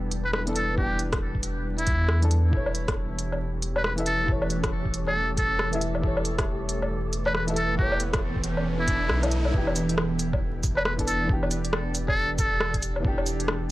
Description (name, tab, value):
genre	future garage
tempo	137 BPM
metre	4/4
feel	swing 62% on 16ths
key	E dorian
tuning	A4 = 439 Hz
part	warm upright piano	accompaniment	0.0-13.7 s	E3 to E5	-34 LUFS	left 2 dB	sidechain pumping, analog delay
part	ethereal airy pad	sustained chords	0.0-13.7 s	E3 to D5	-33 LUFS	right 2 dB	ensemble chorus, built-in reverb, sidechain pumping
part	soft dub sub bass	bass	0.0-13.7 s	E1 to E2	-29 LUFS	equal	sidechain pumping
part	organic electronic drum kit	drums	0.1-13.6 s	cabasa, hi-hat, rim click, woodblock	-28 LUFS	equal	none
part	trumpet with metal mute	melody	0.2-12.7 s	E4 to B4	-30 LUFS	equal	analog delay
part	electronic kick drum	drums	0.8-13.2 s	none	-28 LUFS	equal	none
part	wind-like tuned noise texture	texture	3.1-9.5 s	G3 to G4	-41 LUFS	left 1 dB	built-in reverb
part	riser	sound effects	7.2-9.5 s	none	-38 LUFS	equal	none
room	little or no reverb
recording	dry, gritty hardware recording, transformer saturation, vinyl crackle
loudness	-23 LUFS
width	side -17 dB against mid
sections	0.0-9.5 A section; 9.5-13.7 A section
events	riser 7.2-9.5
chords	0.0 Em7; 2.5 A/E; 9.5 Em7